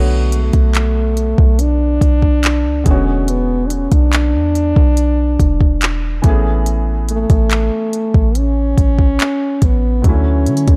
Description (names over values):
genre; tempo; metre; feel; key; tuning
contemporary R&B; 71 BPM; 4/4; straight; unclear; A4 = 443 Hz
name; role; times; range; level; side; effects
felt-muted upright piano; accompaniment; 0.0-10.8 s; D3 to C#5; -27 LUFS; equal; none
warm 808-style bass; bass; 0.0-10.8 s; E1 to D3; -18 LUFS; equal; none
mellow French horn; melody; 0.3-10.8 s; A3 to D4; -21 LUFS; equal; none
smooth R&B drum kit; drums; 0.3-10.8 s; handclaps, hi-hat, kick drum; -17 LUFS; equal; none
room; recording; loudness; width
digital ambience; dark, warm production; -14 LUFS; mono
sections
0.0-10.8 A section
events
none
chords
0.0 Bm9; 2.9 E13; 6.2 Amaj7; 10.0 Dmaj9